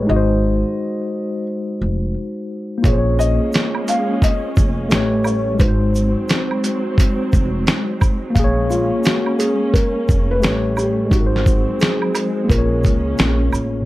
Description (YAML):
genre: lo-fi hip hop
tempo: 87 BPM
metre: 4/4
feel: swing 65% on 16ths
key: unclear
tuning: A4 = 439 Hz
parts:
  - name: felt-muted upright piano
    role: melody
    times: 0.0-13.5 s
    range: F4 to F5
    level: -24 LUFS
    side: left 1 dB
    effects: low-pass filter, plate reverb
  - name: tine electric piano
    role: accompaniment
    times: 0.0-13.9 s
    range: Bb2 to F5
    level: -21 LUFS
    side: left 2 dB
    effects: medium stereo tremolo, cassette tape, low-pass filter
  - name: upright bass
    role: bass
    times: 0.0-13.9 s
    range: F1 to Db2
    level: -20 LUFS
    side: equal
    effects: none
  - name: dark studio string section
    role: sustained chords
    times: 2.8-13.9 s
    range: Gb3 to Db4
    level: -24 LUFS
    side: right 2 dB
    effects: low-pass filter
  - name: dusty soul sampler-style drum kit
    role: drums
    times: 2.8-13.7 s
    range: finger snaps, hi-hat, kick drum, shaker, snare drum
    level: -17 LUFS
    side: equal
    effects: none
  - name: egg shaker and woodblock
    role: percussion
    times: 2.8-13.7 s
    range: none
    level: -30 LUFS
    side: right 4 dB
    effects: none
room: light reverb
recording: dark, warm production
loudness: -15 LUFS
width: side -17 dB against mid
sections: 0.0-13.9 A section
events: none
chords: 0.1 Ab7; 2.8 Bbm7; 4.9 A9; 5.6 Ab7; 8.4 Bbm7; 10.4 A9; 11.1 Ab7; 12.5 Bbm7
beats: | 0.08 0.77 1.46 2.15 | 2.84 3.53 4.22 4.91 | 5.60 6.29 6.98 7.67 | 8.36 9.05 9.74 10.43 | 11.12 11.81 12.50 13.19